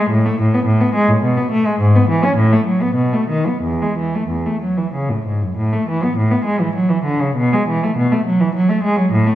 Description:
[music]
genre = classical, baroque-style suite movement for unaccompanied cello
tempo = 84-109 BPM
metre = 3/4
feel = rubato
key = E major, A major from 5.6 s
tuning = A4 = 440 Hz
[part]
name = warm cello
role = solo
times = 0.0-9.3 s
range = E2 to C#4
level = -14 LUFS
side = equal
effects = none
[sound]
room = wet recital hall reverb, RT60 1.4 s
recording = recorded in a church or concert hall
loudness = -14 LUFS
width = side -13 dB against mid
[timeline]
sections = 0.0-5.6 A section; 5.6-9.3 A section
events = none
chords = none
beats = | 0.09 0.67 1.23 | 1.79 2.36 2.95 | 3.62 4.29 4.94 | 5.58 6.17 6.75 | 7.38 7.98 8.55 | 9.12

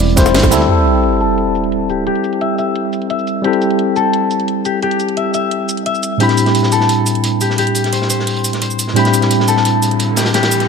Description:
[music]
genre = liquid drum and bass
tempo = 174 BPM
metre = 4/4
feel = straight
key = A minor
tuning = A4 = 442 Hz
[part]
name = tine electric piano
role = accompaniment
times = 0.0-10.7 s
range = A2 to B5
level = -15 LUFS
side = equal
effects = slow stereo tremolo, tape echo
[part]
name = smooth synth bass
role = bass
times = 0.0-0.7 s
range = E1 to D2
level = -15 LUFS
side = equal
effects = tube saturation
[part]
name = crunchy breakbeat drum kit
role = drums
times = 0.0-0.7, 6.2-10.7 s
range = hi-hat, snare drum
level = -22 LUFS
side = right 1 dB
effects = high-pass filter on hats, high-pass filter on snare, high-pass filter on room
[part]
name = drum and bass drum kit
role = drums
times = 0.0-10.7 s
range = cabasa, hi-hat, snare drum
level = -22 LUFS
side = right 2 dB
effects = overdrive, low-pass filter on hats, low-pass filter on perc, low-pass filter on snare
[part]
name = electronic kick drum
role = drums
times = 0.2-0.5 s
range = none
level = -13 LUFS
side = equal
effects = overdrive
[part]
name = bongos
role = percussion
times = 0.3-0.7 s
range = none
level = -24 LUFS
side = left 7 dB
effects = none
[part]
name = concert harp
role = arpeggios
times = 0.7-10.7 s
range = G4 to E5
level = -18 LUFS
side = left 5 dB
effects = low-pass filter, tape echo
[part]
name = sub drop and riser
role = sound effects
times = 0.7-2.1, 9.7-10.7 s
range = none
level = -21 LUFS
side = right 1 dB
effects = none
[sound]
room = light reverb, studio ambience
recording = none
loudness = -12 LUFS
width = side -5 dB against mid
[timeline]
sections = 0.7-10.7 A section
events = band accent 0.3; impact 0.7-2.1; filter sweep on harp 0.7-10.7; riser 9.7-10.7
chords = 0.0 D9sus4; 0.7 Am7; 6.2 D13sus4/A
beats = 0.00 0.34 | 0.69 1.03 1.38 1.72 | 2.07 2.41 2.76 3.10 | 3.45 3.79 4.13 4.48 | 4.83 5.17 5.51 5.86 | 6.20 6.55 6.89 7.24 | 7.58 7.93 8.27 8.62 | 8.96 9.31 9.65 10.00 | 10.34

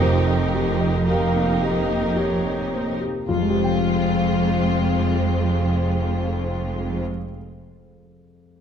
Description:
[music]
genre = cinematic, emotional film score for orchestra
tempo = 56 BPM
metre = 3/4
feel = rubato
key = F minor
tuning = A4 = 440 Hz
[part]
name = clear symphonic violin section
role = melody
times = 0.0-7.0 s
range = F4 to Bb4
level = -30 LUFS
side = left 1 dB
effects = none
[part]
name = rich symphonic violin section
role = second line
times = 0.0-7.0 s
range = C4 to G4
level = -31 LUFS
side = left 2 dB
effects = none
[part]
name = clear studio viola section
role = accompaniment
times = 0.0-7.0 s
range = Ab3 to Eb4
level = -30 LUFS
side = right 3 dB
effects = none
[part]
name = warm concert grand piano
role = accompaniment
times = 0.0-8.6 s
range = F2 to G5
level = -26 LUFS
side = left 1 dB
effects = none
[part]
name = concert harp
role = arpeggios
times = 0.0-7.2 s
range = F2 to C5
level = -28 LUFS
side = left 10 dB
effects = none
[part]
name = clear studio cello section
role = bass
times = 0.0-7.0 s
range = F2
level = -25 LUFS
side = right 1 dB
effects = none
[part]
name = clear studio double bass section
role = bass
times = 0.0-7.0 s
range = F1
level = -27 LUFS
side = right 4 dB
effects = none
[part]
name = clear clarinet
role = second line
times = 1.1-3.3 s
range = C5 to F5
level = -29 LUFS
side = right 2 dB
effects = none
[sound]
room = moderate scoring stage reverb, RT60 1.7 s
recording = dark, warm production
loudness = -19 LUFS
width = side -8 dB against mid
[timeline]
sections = 0.0-3.3 A section; 3.3-6.5 B section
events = slowing down 0.0-3.3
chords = 0.0 Eb/F; 3.3 Fmadd9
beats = | 0.02 1.08 2.17 | 3.28 4.37 5.45

